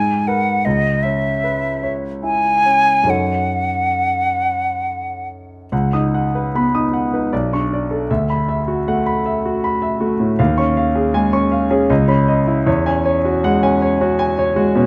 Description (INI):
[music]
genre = classical, impressionist duo for flute and grand piano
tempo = 66-82 BPM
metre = 3/4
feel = rubato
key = unclear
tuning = A4 = 438 Hz
[part]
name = bright silver concert flute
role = melody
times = 0.0-5.3 s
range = D#5 to G#5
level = -19 LUFS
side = equal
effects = none
[part]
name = warm concert grand piano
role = accompaniment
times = 0.0-14.9 s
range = B1 to D#6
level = -19 LUFS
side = equal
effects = none
[sound]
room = moderate recital hall reverb, RT60 1.6 s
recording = close, detailed microphones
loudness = -17 LUFS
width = mono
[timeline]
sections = 0.0-5.7 A section; 5.7-14.9 B section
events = none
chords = 0.0 G#m9; 0.7 C#m7; 3.1 F#m6; 5.7 C#9sus4; 7.3 Bm9; 8.1 D69; 10.4 D#9sus4; 11.9 C#m9; 12.7 E69